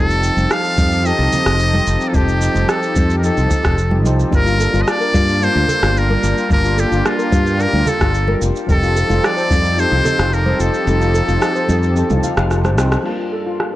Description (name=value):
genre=sunset chillout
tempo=110 BPM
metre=4/4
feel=straight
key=unclear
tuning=A4 = 440 Hz
part: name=trumpet with metal mute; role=melody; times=0.0-12.5 s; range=F4 to F5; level=-19 LUFS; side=equal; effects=analog delay
part: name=soft electric-piano-like synth keys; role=accompaniment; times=0.0-13.8 s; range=F3 to A5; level=-23 LUFS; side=equal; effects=chorus, auto-pan, vintage 12-bit sampler grit
part: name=lush unison pad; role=sustained chords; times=0.0-13.8 s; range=G2 to A5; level=-24 LUFS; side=equal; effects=chorus
part: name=modern bright fingered electric bass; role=bass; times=0.0-13.0 s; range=F1 to G2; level=-17 LUFS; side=equal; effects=none
part: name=deep house drum kit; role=drums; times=0.1-13.7 s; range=crash cymbal, rim click, shaker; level=-22 LUFS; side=equal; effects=low-pass filter on perc, low-pass filter on snare, low-pass filter on cymbals, low-pass filter on room
part: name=congas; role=percussion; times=0.4-12.8 s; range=none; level=-27 LUFS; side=right 1 dB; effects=none
part: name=electronic kick drum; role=drums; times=0.8-9.6 s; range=none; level=-18 LUFS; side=equal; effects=none
part: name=steel pan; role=arpeggios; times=4.5-13.8 s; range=F4 to F5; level=-23 LUFS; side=left 3 dB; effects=low-pass filter, analog delay
room=little or no reverb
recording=dry, gritty hardware recording, cassette tape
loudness=-13 LUFS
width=side -15 dB against mid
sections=0.0-13.1 A section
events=kick drops out 10.9-13.1; drum fill 12.5-13.1; band accent 12.9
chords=0.0 F9; 4.3 Gm9; 8.4 F9; 13.1 Gm9